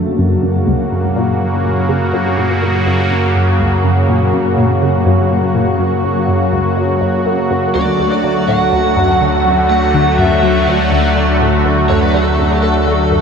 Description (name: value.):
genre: ambient, sequencer-driven space music.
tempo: 123 BPM.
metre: 4/4.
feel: straight.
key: unclear.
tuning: A4 = 440 Hz.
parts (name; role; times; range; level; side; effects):
sweeping resonant pad; sustained chords; 0.0-13.2 s; C#3 to F#4; -14 LUFS; equal; chorus, shimmer reverb.
resonant blip pluck; riff; 0.0-13.2 s; C#2 to A3; -18 LUFS; left 1 dB; phaser, ensemble chorus, ping-pong delay.
warm sub bass; bass; 0.0-13.2 s; D2 to F#2; -18 LUFS; equal; tube saturation.
lead guitar through a small cranked amp; melody; 7.8-13.2 s; A4 to F#5; -17 LUFS; right 1 dB; overdrive, shimmer reverb, ping-pong delay.
room: wet huge ambient reverb, RT60 8.1 s.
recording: dreamy mix soaked in reverb, cassette tape.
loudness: -11 LUFS.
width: side -6 dB against mid.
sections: 0.0-13.2 A section.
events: none.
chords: 0.0 F#; 7.7 D.